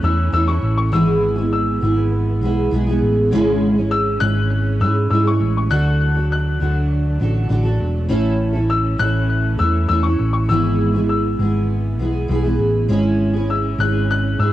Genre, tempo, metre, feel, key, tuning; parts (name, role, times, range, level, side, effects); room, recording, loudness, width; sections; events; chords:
acoustic pop; 100 BPM; 4/4; straight; A major; A4 = 440 Hz
dark upright piano; melody; 0.0-14.5 s; C#6 to F#6; -23 LUFS; left 5 dB; cassette tape, analog delay
fingerpicked steel-string acoustic guitar; accompaniment; 0.0-14.5 s; G#2 to A4; -20 LUFS; right 1 dB; double-tracked left and right, cassette tape
warm studio string section; sustained chords; 0.0-14.5 s; E3 to D4; -31 LUFS; right 3 dB; stereo widening, cassette tape
hollow-body short-scale fingered electric bass; bass; 0.0-14.5 s; E1 to G#2; -18 LUFS; equal
small room ambience; home recording on cassette; -15 LUFS; side -14 dB against mid
0.0-14.5 A section
0.0 A; 0.9 E/G#; 3.3 C#m/G#; 5.7 D; 8.1 A; 10.5 E/G#; 12.9 C#m/G#